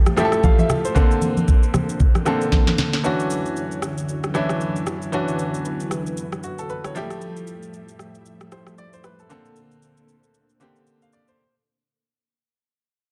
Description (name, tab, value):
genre	amapiano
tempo	115 BPM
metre	4/4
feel	swing 58% on 16ths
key	unclear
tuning	A4 = 441 Hz
part	bright baby grand piano	accompaniment	0.0-11.5 s	D3 to F5	-26 LUFS	equal	none
part	string machine, cellos	sustained chords	0.0-11.4 s	D3 to E5	-32 LUFS	equal	ensemble chorus, sidechain pumping
part	afro-pop drum kit	drums	0.1-11.4 s	kick drum, rim click, shaker, snare drum	-22 LUFS	equal	vintage 12-bit sampler grit
part	congas	percussion	0.1-2.9 s	none	-26 LUFS	equal	none
room	light reverb, studio ambience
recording	none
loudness	-21 LUFS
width	mono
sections	0.0-11.4 A section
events	fade-out 0.0-11.4; drum fill 2.5-3.0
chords	0.0 Fmaj9; 1.0 Bbmaj9; 3.0 Dmaj9; 7.0 Fmaj9; 9.3 Bbmaj9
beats	0.43 | 0.95 1.48 2.00 2.52 | 3.04 3.56 4.08 4.61 | 5.13 5.65 6.17 6.69 | 7.22 7.74 8.26 8.78 | 9.30 9.82 10.35 10.87